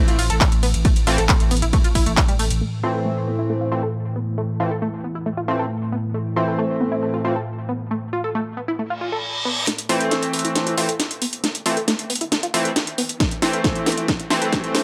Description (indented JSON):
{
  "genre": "driving peak-time techno",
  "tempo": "136 BPM",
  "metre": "4/4",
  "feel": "straight",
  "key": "A minor",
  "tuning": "A4 = 443 Hz",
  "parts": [
    { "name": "sync-sweep polysynth", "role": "stabs", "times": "0.0-14.8 s", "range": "E3 to C4", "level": "-26 LUFS", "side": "equal", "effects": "chorus, cassette tape, sidechain pumping, dub echo" },
    { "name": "deep dark ambient pad", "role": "drone", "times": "0.2-9.7 s", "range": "A2 to E3", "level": "-30 LUFS", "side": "equal", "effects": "chorus, built-in reverb, sidechain pumping" },
    { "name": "tight sequenced synth", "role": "riff", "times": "0.1-14.8 s", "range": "G3 to A4", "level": "-29 LUFS", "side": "equal", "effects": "chorus, sidechain pumping, dub echo" },
    { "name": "saturated sub bass", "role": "bass", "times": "0.1-2.6 s", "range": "A1", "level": "-25 LUFS", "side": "equal", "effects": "overdrive, sidechain pumping, low-pass filter" },
    { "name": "techno drum kit", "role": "drums", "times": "0.1-2.6, 9.7-14.8 s", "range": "handclaps, hi-hat, ride cymbal, snare drum", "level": "-25 LUFS", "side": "equal", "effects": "sidechain pumping on hats, sidechain pumping on cymbals" },
    { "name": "electronic kick drum", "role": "drums", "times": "0.4-2.3, 13.2-14.6 s", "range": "none", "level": "-21 LUFS", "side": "equal", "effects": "none" },
    { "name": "reverse cymbal and riser", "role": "sound effects", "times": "9.0-14.8 s", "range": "none", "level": "-32 LUFS", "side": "equal", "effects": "none" }
  ],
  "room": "light reverb",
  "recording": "high-pass filter",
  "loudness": "-21 LUFS",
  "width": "mono",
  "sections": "0.0-2.6 A section; 2.6-9.7 B section; 9.7-14.8 C section",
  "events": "drop 0.0-2.6; filter sweep on synth arpeggio sound 2.6-9.7, 9.7-14.8; reverse cymbal 9.0-9.7; build-up 9.7-14.8; drum fill 9.7-14.8",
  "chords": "0.0 Am"
}